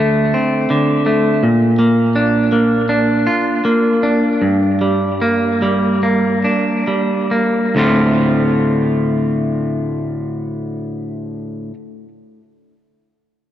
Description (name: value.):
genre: rock.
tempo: 66-83 BPM.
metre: 4/4.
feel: straight.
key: D minor.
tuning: A4 = 437 Hz.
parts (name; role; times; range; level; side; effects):
electric guitar at the edge of break-up; arpeggios; 0.0-11.7 s; D2 to F4; -14 LUFS; equal; tape echo.
room: moderate lush hall reverb, RT60 2.1 s.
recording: none.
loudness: -13 LUFS.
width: side -11 dB against mid.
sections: 0.0-7.8 A section; 7.8-11.4 B section.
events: slowing down 1.4-7.8.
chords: 0.0 D5; 1.4 Bb; 4.4 Gm; 7.8 Dm7.